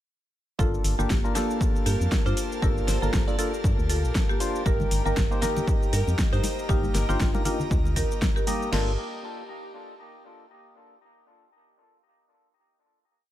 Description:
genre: deep house.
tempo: 118 BPM.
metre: 4/4.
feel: swing 57% on 16ths.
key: G minor.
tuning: A4 = 440 Hz.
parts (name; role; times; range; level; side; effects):
marimba with medium hard mallets; melody; 0.6-8.9 s; Bb3 to Bb4; -32 LUFS; equal; ping-pong delay.
airy breathy pad; sustained chords; 0.6-9.0 s; Bb3 to Bb5; -38 LUFS; left 1 dB; chorus, sidechain pumping.
percussive organ stab; stabs; 0.6-8.9 s; Bb3 to Eb5; -32 LUFS; left 1 dB; chorus, sidechain pumping, tape echo.
organ-like FM bass; bass; 0.6-9.0 s; G1 to G2; -26 LUFS; equal; sidechain pumping.
deep house drum kit; drums; 0.6-8.7 s; hi-hat, shaker, snare drum; -32 LUFS; equal; studio reverb.
punchy analog drum machine; drums; 0.6-8.9 s; crash cymbal, kick drum, snare drum; -26 LUFS; equal; studio reverb.
soft string machine; texture; 0.6-8.7 s; Bb4; -41 LUFS; equal; none.
glassy wavetable pluck; melody; 1.9-7.2 s; Bb4 to D5; -37 LUFS; right 1 dB; chorus, ping-pong delay.
congas; percussion; 4.7-8.6 s; none; -35 LUFS; left 3 dB; none.
room: digital ambience.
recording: none.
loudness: -22 LUFS.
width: side -13 dB against mid.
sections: 0.6-8.7 drop; 8.7-10.8 final chord.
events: drop 0.6-8.7.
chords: 0.6 Gm9; 4.7 Eb/G; 8.7 Gm9.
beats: | 0.59 1.10 1.61 2.12 | 2.62 3.13 3.64 4.15 | 4.66 5.17 5.67 6.18 | 6.69 7.20 7.71 8.22 | 8.72.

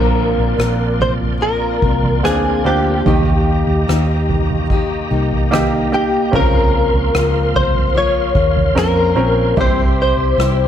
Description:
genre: pop ballad.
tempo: 73 BPM.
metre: 4/4.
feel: straight.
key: unclear.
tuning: A4 = 440 Hz.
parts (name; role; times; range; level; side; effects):
direct-recorded clean electric guitar; melody; 0.0-10.7 s; G4 to Db5; -18 LUFS; left 2 dB; ensemble chorus.
clear grand piano; accompaniment; 0.0-10.7 s; Bb2 to Bb4; -21 LUFS; right 3 dB; none.
bright tonewheel organ; sustained chords; 0.0-10.7 s; G4 to C6; -27 LUFS; right 1 dB; chorus vibrato, fast rotary speaker.
fingerpicked steel-string acoustic guitar; arpeggios; 0.0-10.7 s; Bb2 to G4; -24 LUFS; left 8 dB; none.
vintage muted fingered electric bass; bass; 0.0-10.7 s; Bb1 to F2; -19 LUFS; equal; none.
soft-mallet drum kit; drums; 0.6-10.6 s; kick drum, rim click, toms; -19 LUFS; right 1 dB; none.
room: studio reverb.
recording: none.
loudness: -13 LUFS.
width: side -9 dB against mid.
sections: 0.0-10.7 A section.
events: none.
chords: 0.0 Bbadd9; 3.1 Eb; 6.3 Bbmadd9/Db; 9.6 C.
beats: 0.59 1.42 2.24 | 3.06 3.88 4.70 5.52 | 6.33 7.14 7.95 8.76 | 9.58 10.39.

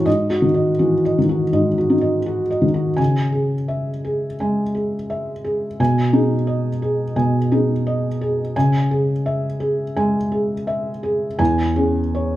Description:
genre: neoclassical minimalist piano.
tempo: 79-88 BPM.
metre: 4/4.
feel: rubato.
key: C# minor.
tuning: A4 = 440 Hz.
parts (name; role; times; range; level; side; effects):
felt-muted upright piano; solo; 0.0-12.4 s; E2 to G#5; -17 LUFS; equal; none.
room: wet large studio reverb, RT60 1.0 s.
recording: band playing live in one room.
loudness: -17 LUFS.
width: side -14 dB against mid.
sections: 0.0-3.0 A section; 3.0-12.4 B section.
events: none.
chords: 0.1 G#5; 3.0 C#m; 5.8 G#m/B; 8.5 C#m; 11.4 E6.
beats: | 0.06 0.80 1.53 2.27 | 2.99 3.69 4.39 5.09 | 5.79 6.48 7.17 7.86 | 8.55 9.24 9.95 10.66 | 11.39 12.15.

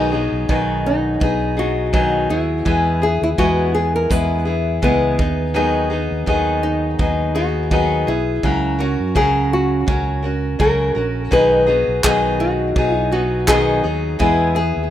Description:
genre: acoustic pop.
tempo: 83 BPM.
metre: 4/4.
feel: swing 55% on 16ths.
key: B major.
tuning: A4 = 440 Hz.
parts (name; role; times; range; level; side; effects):
nylon-string guitar; melody; 0.0-14.9 s; B3 to B4; -21 LUFS; equal; tape echo.
picked steel-string acoustic guitar; accompaniment; 0.0-14.9 s; B2 to A#4; -19 LUFS; left 2 dB; none.
fingered electric bass; bass; 0.0-14.9 s; A#1 to F#2; -22 LUFS; right 1 dB; none.
natural country drum kit; drums; 0.5-14.4 s; handclaps, kick drum; -21 LUFS; right 1 dB; none.
room: light reverb.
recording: rough home demo mix.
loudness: -15 LUFS.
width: side -11 dB against mid.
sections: 0.0-14.9 A section.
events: none.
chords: 0.0 B6; 2.7 E; 5.2 B6/D#; 8.4 F#/C#; 11.3 B6; 14.2 E.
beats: 0.49 1.22 1.94 | 2.66 3.38 4.11 4.83 | 5.55 6.27 6.99 7.71 | 8.43 9.15 9.88 10.60 | 11.32 12.04 12.76 13.48 | 14.20.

